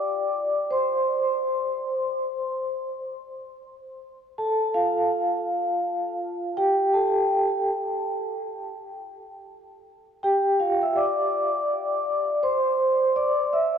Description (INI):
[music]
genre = hip hop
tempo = 82 BPM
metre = 4/4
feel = swing 62% on 16ths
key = F major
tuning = A4 = 440 Hz
[part]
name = vibraphone with soft mallets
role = solo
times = 0.0-13.8 s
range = F4 to E6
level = -23 LUFS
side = equal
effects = low-pass filter, diffuse ambient delay
[sound]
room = wet huge ambient reverb, RT60 4.7 s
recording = dreamy mix soaked in reverb, cassette tape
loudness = -22 LUFS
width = side -8 dB against mid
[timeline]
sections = 0.0-13.8 A section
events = vibraphone solo 0.0-13.8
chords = 0.0 N.C.; 3.6 F; 5.1 N.C.; 6.6 Gsus2; 7.7 N.C.; 9.5 Fsus2; 11.0 N.C.; 12.4 Csus2